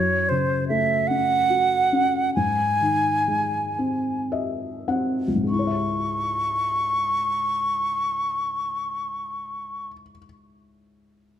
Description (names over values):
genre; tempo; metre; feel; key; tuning
children's music, lullaby; 32-51 BPM (dotted quarters); 6/8; rubato; C# harmonic minor; A4 = 440 Hz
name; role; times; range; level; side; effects
bright wooden flute; melody; 0.0-9.9 s; B#4 to C#6; -22 LUFS; right 1 dB; none
felt-muted upright piano; accompaniment; 0.0-11.4 s; C#2 to F#5; -25 LUFS; left 2 dB; none
room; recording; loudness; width
moderate recital hall reverb, RT60 1.7 s; none; -21 LUFS; side -10 dB against mid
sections
0.0-5.5 A section; 5.5-9.1 B section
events
slowing down 0.0-5.5; felt piano fill 3.8-5.5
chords
0.0 F#m; 2.4 G#; 5.5 C#m